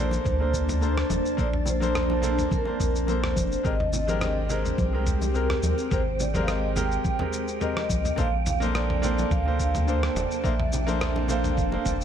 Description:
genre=sunset chillout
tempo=106 BPM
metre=4/4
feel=swing 54% on 16ths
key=unclear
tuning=A4 = 438 Hz
part: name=vibraphone with soft mallets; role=melody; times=0.0-12.0 s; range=Bb4 to G5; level=-31 LUFS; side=right 1 dB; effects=ping-pong delay
part: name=clear grand piano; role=accompaniment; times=0.0-11.9 s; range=Ab3 to A5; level=-30 LUFS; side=moving between left 4 dB and right 3 dB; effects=auto-pan, tape echo
part: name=shimmering ambient pad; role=sustained chords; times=0.0-12.0 s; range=Ab3 to A5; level=-32 LUFS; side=left 1 dB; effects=chorus, built-in reverb
part: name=round analog bass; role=bass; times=0.0-12.0 s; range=F1 to Eb2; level=-27 LUFS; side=equal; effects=none
part: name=dusty soul sampler-style drum kit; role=drums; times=0.1-12.0 s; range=rim click, shaker, toms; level=-33 LUFS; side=equal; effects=none
part: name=congas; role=percussion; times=0.1-11.8 s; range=none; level=-35 LUFS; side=left 2 dB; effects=none
part: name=electronic kick drum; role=drums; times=0.3-12.0 s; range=none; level=-29 LUFS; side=equal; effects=none
part: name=wind-like tuned noise texture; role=texture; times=4.4-12.0 s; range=G5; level=-40 LUFS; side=right 6 dB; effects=built-in reverb
room=light reverb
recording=none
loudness=-23 LUFS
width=side -9 dB against mid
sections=0.0-12.0 A section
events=none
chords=0.0 Bbmaj9; 3.6 Abmaj9; 8.2 Bbmaj9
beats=0.25 0.82 | 1.39 1.95 2.52 3.08 | 3.65 4.22 4.78 5.35 | 5.91 6.48 7.05 7.61 | 8.18 8.74 9.31 9.88 | 10.44 11.01 11.57

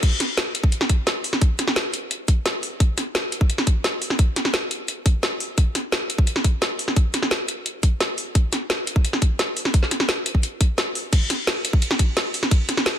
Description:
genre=drum and bass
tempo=173 BPM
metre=4/4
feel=straight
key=none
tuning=none
part: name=drum and bass drum kit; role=drums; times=0.0-12.9 s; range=crash cymbal, hi-hat, ride cymbal, snare drum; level=-22 LUFS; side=equal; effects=none
part: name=electronic kick drum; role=drums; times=0.0-12.6 s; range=none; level=-18 LUFS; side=equal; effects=none
room=little or no reverb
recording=dense, heavily limited modern master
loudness=-19 LUFS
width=side -10 dB against mid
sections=0.0-13.0 A section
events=drop 0.0-13.0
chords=none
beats=| 0.03 0.38 0.72 1.07 | 1.42 1.76 2.11 2.46 | 2.80 3.15 3.50 3.84 | 4.19 4.54 4.88 5.23 | 5.58 5.92 6.27 6.62 | 6.96 7.31 7.66 8.01 | 8.35 8.70 9.05 9.39 | 9.74 10.09 10.43 10.78 | 11.13 11.47 11.82 12.17 | 12.51 12.86

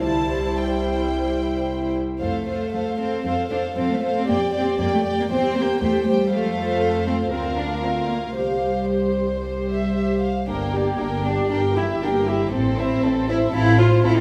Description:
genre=quick classical-period movement for string orchestra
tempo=107-121 BPM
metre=4/4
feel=rubato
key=F major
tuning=A4 = 442 Hz
part: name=warm chamber violin section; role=melody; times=0.0-14.2 s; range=C5 to A5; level=-31 LUFS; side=equal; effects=none
part: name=warm chamber violin section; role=second line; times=0.0-14.2 s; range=E4 to D5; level=-30 LUFS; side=equal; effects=none
part: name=warm chamber viola section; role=accompaniment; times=0.0-14.2 s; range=G3 to A4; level=-28 LUFS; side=equal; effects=none
part: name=clear chamber double bass section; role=bass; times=0.0-14.2 s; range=G1 to F2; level=-28 LUFS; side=equal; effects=none
part: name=warm chamber cello section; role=bass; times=0.0-14.2 s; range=C2 to F4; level=-27 LUFS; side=equal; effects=none
room=wet recital hall reverb, RT60 1.5 s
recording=recorded in a church or concert hall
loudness=-22 LUFS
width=mono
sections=0.0-2.2 A section; 2.2-14.2 B section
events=none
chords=0.0 C; 2.2 F; 4.3 Gm7/F; 5.3 C/E; 6.3 F; 7.3 Bb/D; 8.4 Csus4; 10.5 Gm; 11.5 Edim/G; 12.5 Am; 13.5 F/A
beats=| 0.02 0.57 1.12 1.67 | 2.21 2.74 3.25 3.77 | 4.29 4.80 5.32 5.82 | 6.32 6.81 7.32 7.84 | 8.37 8.90 9.43 9.95 | 10.48 11.00 11.51 12.02 | 12.53 13.04 13.54 14.04

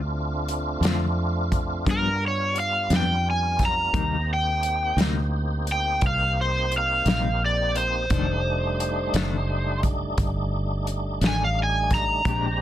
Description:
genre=slow blues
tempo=58 BPM (dotted quarters)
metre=12/8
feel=straight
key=unclear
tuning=A4 = 437 Hz
part: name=tonewheel organ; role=sustained chords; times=0.0-12.6 s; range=G3 to G4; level=-31 LUFS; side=right 1 dB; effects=slow rotary speaker, overdrive, chorus vibrato
part: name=fingered electric bass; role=bass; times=0.0-12.6 s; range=F1 to G2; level=-26 LUFS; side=equal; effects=none
part: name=warm soul drum kit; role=drums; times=0.5-12.4 s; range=hi-hat, kick drum, snare drum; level=-26 LUFS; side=equal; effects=none
part: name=clean electric guitar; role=accompaniment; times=0.8-12.5 s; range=F2 to G4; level=-30 LUFS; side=left 7 dB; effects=tremolo
part: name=overdriven slide guitar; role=melody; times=1.9-12.6 s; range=Bb4 to Bb5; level=-24 LUFS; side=equal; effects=none
room=little or no reverb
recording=dense, heavily limited modern master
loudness=-21 LUFS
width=side -12 dB against mid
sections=0.0-12.6 A section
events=electric slide guitar solo 0.0-12.6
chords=0.0 Dm7; 1.9 G7; 3.9 Cm7; 8.1 F13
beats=0.84 1.87 2.91 | 3.95 4.99 6.03 7.06 | 8.10 9.14 10.18 11.21 | 12.25

